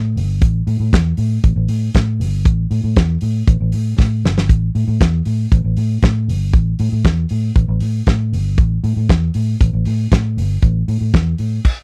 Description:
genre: disco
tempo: 118 BPM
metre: 4/4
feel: straight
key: unclear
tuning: A4 = 439 Hz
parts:
  - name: vintage muted fingered electric bass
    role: bass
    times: 0.0-11.6 s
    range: G1 to A2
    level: -18 LUFS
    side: equal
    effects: none
  - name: warm soul drum kit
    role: drums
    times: 0.2-11.8 s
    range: crash cymbal, hi-hat, kick drum, snare drum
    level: -15 LUFS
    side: equal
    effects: none
room: little or no reverb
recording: dry, close 1970s-style studio recording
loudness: -16 LUFS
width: mono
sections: 0.0-11.8 A section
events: drum fill 4.0-4.5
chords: none

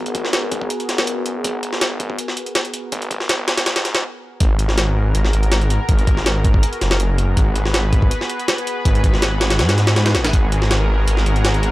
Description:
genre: drum and bass, jungle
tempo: 162 BPM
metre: 4/4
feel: straight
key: G# minor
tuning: A4 = 439 Hz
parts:
  - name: lush unison pad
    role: sustained chords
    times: 0.0-11.7 s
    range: B3 to B4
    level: -25 LUFS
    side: equal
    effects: chorus
  - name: detuned saw bass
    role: bass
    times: 0.0-11.7 s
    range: F#1 to G#2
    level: -19 LUFS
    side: equal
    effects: high-pass filter
  - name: jungle sampler-style drum kit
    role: drums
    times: 0.1-11.7 s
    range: hi-hat, kick drum, snare drum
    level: -18 LUFS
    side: equal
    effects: overdrive, high-pass filter on kick, high-pass filter on hats, high-pass filter on snare
room: little or no reverb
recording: dry, gritty hardware recording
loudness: -16 LUFS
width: side -18 dB against mid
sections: 0.0-4.4 A section; 4.4-11.7 B section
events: build-up 0.0-4.4; filter sweep on analog synth pad 0.0-4.4; stop 4.0-4.4; drop 4.4-11.7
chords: 0.0 G#m9

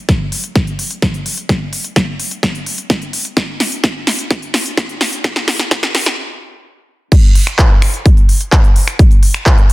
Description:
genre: EDM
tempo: 128 BPM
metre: 4/4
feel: straight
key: none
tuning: none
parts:
  - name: big-room dance drum kit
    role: drums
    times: 0.1-9.7 s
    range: crash cymbal, finger snaps, handclaps, hi-hat, snare drum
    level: -16 LUFS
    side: equal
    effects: overdrive
  - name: electronic kick drum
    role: drums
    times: 0.1-9.6 s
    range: none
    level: -10 LUFS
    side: equal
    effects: none
room: little or no reverb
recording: dense, heavily limited modern master, high-pass filter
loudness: -12 LUFS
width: side -20 dB against mid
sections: 0.0-7.1 A section; 7.1-9.7 B section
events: build-up 0.0-7.1; drum fill 0.0-6.2; filter sweep 0.0-7.1; stop 6.2-7.1; drop 7.1-9.7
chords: none

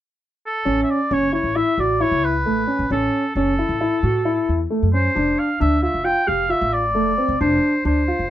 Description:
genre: contemporary instrumental, chamber music in an uneven meter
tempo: 134 BPM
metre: 5/4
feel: straight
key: A mixolydian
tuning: A4 = 440 Hz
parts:
  - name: clear oboe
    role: melody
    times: 0.5-8.3 s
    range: A4 to G5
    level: -22 LUFS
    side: equal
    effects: none
  - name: dark concert grand piano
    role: arpeggios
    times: 0.7-8.2 s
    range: A3 to G4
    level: -20 LUFS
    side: equal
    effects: none
  - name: upright bass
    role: bass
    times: 0.7-8.3 s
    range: F1 to A2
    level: -24 LUFS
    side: equal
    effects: none
room: light reverb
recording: none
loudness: -17 LUFS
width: side -12 dB against mid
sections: 0.7-8.3 A section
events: none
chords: 0.0 N.C.; 0.7 A; 5.2 F6

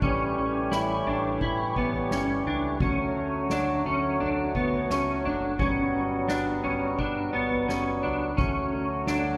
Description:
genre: dream pop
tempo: 86 BPM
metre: 4/4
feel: straight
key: D major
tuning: A4 = 440 Hz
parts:
  - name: mellow accordion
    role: sustained chords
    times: 0.0-9.4 s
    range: E3 to C#5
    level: -32 LUFS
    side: equal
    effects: none
  - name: clean electric guitar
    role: arpeggios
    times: 0.0-9.4 s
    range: B3 to E4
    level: -30 LUFS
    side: equal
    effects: ensemble chorus, delay
  - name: picked electric bass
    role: bass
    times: 0.0-9.4 s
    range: F#1 to D2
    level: -38 LUFS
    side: equal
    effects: none
  - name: soft-mallet drum kit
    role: drums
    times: 0.0-9.2 s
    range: kick drum, snare drum, toms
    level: -36 LUFS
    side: equal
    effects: none
room: moderate lush hall reverb, RT60 1.6 s, small room ambience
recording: rough home demo mix, lossy compression artefacts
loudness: -27 LUFS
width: mono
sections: 0.0-9.4 A section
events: none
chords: 0.0 A7; 2.8 Dmaj7; 5.6 Gmaj7; 8.4 Dmaj7

